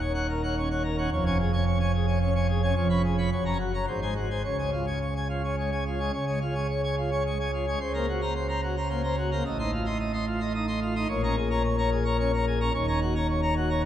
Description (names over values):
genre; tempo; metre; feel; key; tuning
classical, organ toccata; 109 BPM; 3/4; straight; Db major; A4 = 440 Hz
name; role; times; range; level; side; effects
pipe organ, plenum; solo; 0.0-13.9 s; Eb1 to C6; -24 LUFS; equal; none
room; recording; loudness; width
wet church reverb, RT60 3.2 s; dark, warm production; -25 LUFS; side -11 dB against mid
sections
0.0-6.1 A section; 6.1-13.9 A section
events
none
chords
0.0 Ebm7; 1.1 Db/F; 2.8 Db7/F; 3.3 Gb; 3.9 Ab7; 4.4 Db; 7.8 Bbmadd9/Db; 9.5 F7/A; 11.1 Bbm7; 12.7 Ebm7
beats
0.03 0.57 | 1.12 1.67 2.22 | 2.77 3.32 3.87 | 4.44 5.01 5.58 | 6.14 6.70 7.25 | 7.80 8.35 8.91 | 9.46 10.01 10.55 | 11.10 11.65 12.20 | 12.74 13.29 13.84